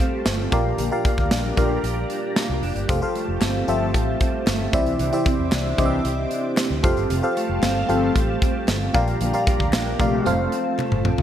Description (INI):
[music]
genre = 1980s-style pop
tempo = 114 BPM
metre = 4/4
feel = straight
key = F major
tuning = A4 = 440 Hz
[part]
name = FM electric piano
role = accompaniment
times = 0.0-11.2 s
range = Bb2 to F5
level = -24 LUFS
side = equal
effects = chorus, phaser
[part]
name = string machine, cellos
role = sustained chords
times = 0.0-11.2 s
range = F4 to D6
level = -32 LUFS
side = equal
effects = phaser, ensemble chorus
[part]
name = mellow electric guitar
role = riff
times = 0.0-11.2 s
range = E3 to G4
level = -29 LUFS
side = right 3 dB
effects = ensemble chorus, digital delay
[part]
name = modern studio drum kit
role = drums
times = 0.0-11.2 s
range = hi-hat, kick drum, snare drum, tambourine, toms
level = -23 LUFS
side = equal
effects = gated reverb
[part]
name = vintage muted fingered electric bass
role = bass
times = 0.3-11.2 s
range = F1 to E2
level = -26 LUFS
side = equal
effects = none
[part]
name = mellow synth brass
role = stabs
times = 0.8-10.3 s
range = C3 to A4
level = -29 LUFS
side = left 4 dB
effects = chorus
[part]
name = group handclap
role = percussion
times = 3.4-10.9 s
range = none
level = -42 LUFS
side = left 6 dB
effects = none
[sound]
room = moderate lush hall reverb, RT60 1.9 s, small room ambience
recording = bright 1980s-style digital production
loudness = -19 LUFS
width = side -10 dB against mid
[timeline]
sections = 0.0-11.2 A section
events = drum fill 10.8-11.2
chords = 0.0 Fadd9; 0.5 Bb6; 2.9 Fadd9; 4.7 Cadd9; 6.8 Fadd9; 8.9 Bb6; 10.3 F